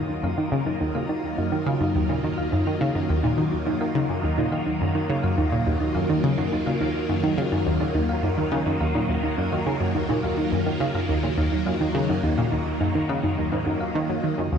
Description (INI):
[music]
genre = ambient, sequencer-driven space music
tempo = 105 BPM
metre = 4/4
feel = straight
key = Eb minor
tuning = A4 = 440 Hz
[part]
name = phased string machine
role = sustained chords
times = 0.0-14.6 s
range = Db3 to Bb4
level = -27 LUFS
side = left 1 dB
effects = ensemble chorus, phaser, shimmer reverb
[part]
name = analog pluck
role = riff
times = 0.0-14.6 s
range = Eb2 to Gb3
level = -24 LUFS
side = equal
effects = chorus, phaser, analog delay, shimmer reverb
[part]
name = thumb-piano-like synth pluck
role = arpeggios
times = 0.1-14.3 s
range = Eb4 to F5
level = -28 LUFS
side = right 2 dB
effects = chorus, auto-pan, analog delay, shimmer reverb
[sound]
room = moderate plate reverb, RT60 3.0 s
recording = dreamy mix soaked in reverb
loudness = -22 LUFS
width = side -7 dB against mid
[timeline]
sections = 0.0-14.4 A section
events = none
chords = 0.0 Ebmadd9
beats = 0.09 | 0.66 1.24 1.81 2.38 | 2.95 3.52 4.09 4.66 | 5.24 5.81 6.38 6.95 | 7.52 8.09 8.66 9.23 | 9.81 10.38 10.95 11.52 | 12.09 12.66 13.23 13.81 | 14.38